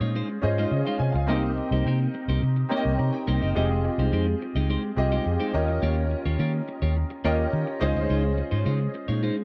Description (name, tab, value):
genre	pop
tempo	106 BPM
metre	4/4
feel	straight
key	F minor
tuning	A4 = 440 Hz
part	clear concert grand piano	accompaniment	0.0-9.4 s	C4 to Bb5	-30 LUFS	equal	ensemble chorus
part	clean electric guitar	riff	0.0-9.4 s	Ab3 to Eb5	-33 LUFS	equal	subtle chorus
part	vintage muted fingered electric bass	bass	0.0-9.3 s	F1 to Eb3	-27 LUFS	equal	none
room	small room ambience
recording	dry, close 1970s-style studio recording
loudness	-25 LUFS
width	mono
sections	0.0-9.4 A section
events	none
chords	0.0 Dbmaj9; 1.3 Cm7; 3.6 Fm9; 5.5 Eb9; 7.8 Dbmaj9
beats	0.15 0.72 | 1.29 1.85 2.42 2.99 | 3.56 4.12 4.69 5.26 | 5.82 6.39 6.96 7.53 | 8.09 8.66 9.23